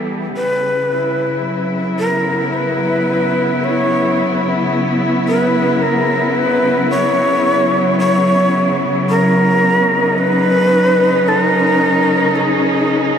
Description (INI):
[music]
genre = dark ambient drone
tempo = 55 BPM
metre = 4/4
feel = straight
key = unclear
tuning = A4 = 440 Hz
[part]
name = breathy bright shakuhachi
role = melody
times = 0.0-13.2 s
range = G#4 to C#5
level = -16 LUFS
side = equal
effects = diffuse ambient delay
[part]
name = rich studio cello section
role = sustained chords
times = 0.0-13.2 s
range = C#3 to E4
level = -16 LUFS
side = left 1 dB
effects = none
[sound]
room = wet huge ambient reverb, RT60 8.5 s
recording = cassette tape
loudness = -12 LUFS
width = side -8 dB against mid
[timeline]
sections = 0.0-13.2 A section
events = none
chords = 0.4 C#m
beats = | 0.36 1.45 2.54 3.63 | 4.72 5.81 6.90 7.99 | 9.09 10.18 11.27 12.36